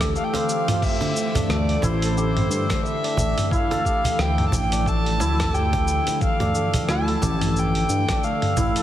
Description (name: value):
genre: organic downtempo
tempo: 89 BPM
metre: 4/4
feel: swing 58% on 16ths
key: D minor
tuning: A4 = 439 Hz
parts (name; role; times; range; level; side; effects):
- dark kamancheh; melody; 0.0-8.8 s; A4 to A5; -26 LUFS; equal; digital delay
- ethereal airy pad; sustained chords; 0.0-8.8 s; D3 to A4; -29 LUFS; equal; ensemble chorus, built-in reverb, sidechain pumping
- santur; arpeggios; 0.0-8.8 s; A3 to A4; -27 LUFS; left 1 dB; ping-pong delay
- smooth synth bass; bass; 0.0-8.7 s; A1 to G2; -24 LUFS; equal; sidechain pumping
- dusty soul sampler-style drum kit; drums; 0.0-8.8 s; crash cymbal, hi-hat, rim click, shaker, toms; -27 LUFS; equal; overdrive
- electronic kick drum; drums; 0.0-8.2 s; none; -25 LUFS; equal; overdrive
- cajon; percussion; 0.3-8.7 s; none; -27 LUFS; right 2 dB; none
room: light reverb, digital ambience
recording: heavily compressed radio sound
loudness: -19 LUFS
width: side -12 dB against mid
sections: 0.0-8.8 A section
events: none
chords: 0.0 Dm7